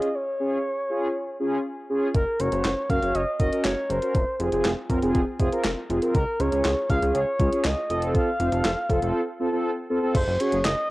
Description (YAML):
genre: synth-pop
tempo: 120 BPM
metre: 4/4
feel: straight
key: unclear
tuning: A4 = 436 Hz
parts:
  - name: expressive synth lead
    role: melody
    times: 0.0-10.9 s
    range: Bb4 to F5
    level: -26 LUFS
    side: equal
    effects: chorus
  - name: mellow synth brass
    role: accompaniment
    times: 0.0-10.6 s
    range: C4 to Db5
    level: -25 LUFS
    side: equal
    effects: chorus
  - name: clean 12-bit digital drum machine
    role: drums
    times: 0.0-10.8 s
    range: crash cymbal, handclaps, hi-hat, kick drum, snare drum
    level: -26 LUFS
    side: equal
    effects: overdrive, cassette tape
  - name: chorused synth bass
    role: bass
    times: 2.1-10.7 s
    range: F1 to Db2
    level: -29 LUFS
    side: equal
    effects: none
room: light reverb, digital ambience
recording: home recording on cassette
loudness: -22 LUFS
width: side -19 dB against mid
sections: 0.0-2.1 A section; 2.1-10.1 B section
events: break 0.1-2.1, 9.1-10.1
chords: 0.0 Db; 2.1 Gb; 4.1 Fm; 6.1 Db; 7.9 F; 10.1 Gbsus2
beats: | 0.15 0.65 1.15 1.65 | 2.15 2.65 3.15 3.65 | 4.15 4.65 5.15 5.65 | 6.15 6.65 7.15 7.65 | 8.15 8.65 9.15 9.65 | 10.15 10.65